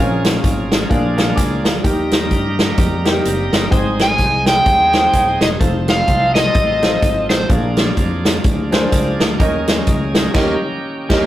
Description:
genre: uptempo gospel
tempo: 127 BPM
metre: 4/4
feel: swing 59% on 8ths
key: unclear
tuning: A4 = 439 Hz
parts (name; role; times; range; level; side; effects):
- warm concert grand piano; accompaniment; 0.0-11.2 s; Ab2 to D6; -21 LUFS; equal; none
- bright tonewheel organ; sustained chords; 0.0-11.3 s; Eb3 to Bb4; -24 LUFS; right 1 dB; slow rotary speaker, overdrive
- fingered electric bass; bass; 0.0-11.2 s; Eb1 to G2; -22 LUFS; equal; none
- swinging big-band drum kit; drums; 0.2-11.2 s; crash cymbal, hi-hat, kick drum, snare drum; -16 LUFS; equal; none
- clean electric guitar; second line; 2.8-3.7, 10.3-10.5 s; C4 to Bb4; -29 LUFS; right 2 dB; none
- overdriven slide guitar; melody; 4.0-7.5 s; C5 to Ab5; -14 LUFS; equal; none
room: moderate studio reverb, RT60 0.5 s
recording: rough rehearsal-room recording, tube saturation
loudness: -13 LUFS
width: side -13 dB against mid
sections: 0.0-11.3 A section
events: band accent 10.3-11.3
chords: 0.0 Bbm7; 0.9 Bb7; 1.8 Eb; 3.7 Abmaj7; 5.6 F7; 7.5 Bb7; 9.4 Eb7sus4; 10.3 Eb7

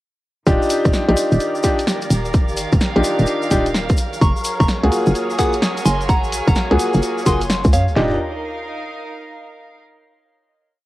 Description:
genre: UK garage, two-step garage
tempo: 128 BPM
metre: 4/4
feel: swing 65% on 16ths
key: unclear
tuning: A4 = 439 Hz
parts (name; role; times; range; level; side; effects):
- soft string machine; sustained chords; 0.5-8.2 s; F4 to F5; -29 LUFS; equal; ensemble chorus, sidechain pumping, cassette tape
- warm grand piano; stabs; 0.5-8.2 s; Bb3 to Ab4; -19 LUFS; left 1 dB; cassette tape, tape echo
- hollow knocking FM bass; bass; 0.5-8.2 s; Eb1 to Gb2; -18 LUFS; equal; none
- house drum kit; drums; 0.5-8.1 s; kick drum, snare drum, toms; -18 LUFS; equal; cassette tape
- punchy analog drum machine; drums; 0.5-7.9 s; hi-hat, rim click, snare drum; -24 LUFS; equal; cassette tape
- tube shaker; percussion; 0.5-7.9 s; none; -32 LUFS; left 2 dB; none
- rich chamber string section; texture; 0.5-9.8 s; Eb3 to Ab5; -30 LUFS; right 2 dB; sidechain pumping, cassette tape
- soft synth bell; melody; 4.2-8.2 s; Db5 to Eb6; -25 LUFS; right 1 dB; chorus, phaser, cassette tape, tape echo
room: light reverb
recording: home recording on cassette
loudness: -15 LUFS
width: side -16 dB against mid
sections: 0.5-8.0 drop; 8.0-9.8 final chord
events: drop 0.5-8.0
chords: 0.5 Ebmaj9; 4.0 Gbmaj9; 8.0 Ebmaj9

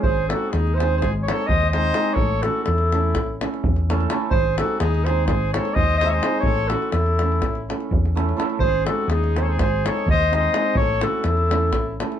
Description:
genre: balkan folk, Balkan wedding band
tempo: 252 BPM (eighths)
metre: 9/8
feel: straight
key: unclear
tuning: A4 = 441 Hz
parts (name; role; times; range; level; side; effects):
- mellow clarinet; melody; 0.0-12.0 s; G#4 to E5; -22 LUFS; left 1 dB; none
- clear trumpet; second line; 0.0-12.0 s; D#4 to C#5; -30 LUFS; right 1 dB; none
- hammered dulcimer; accompaniment; 0.0-12.2 s; G#3 to A4; -28 LUFS; right 3 dB; none
- hollow-body short-scale fingered electric bass; bass; 0.0-12.0 s; G#1 to E2; -22 LUFS; equal; none
- davul; percussion; 0.0-12.2 s; none; -25 LUFS; equal; none
room: light reverb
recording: dark, warm production, nothing above 10.3 kHz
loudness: -18 LUFS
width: side -9 dB against mid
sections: 0.0-12.2 A section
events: none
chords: 0.0 G#; 2.2 A; 4.3 G#; 6.5 A; 8.6 G#; 10.7 A

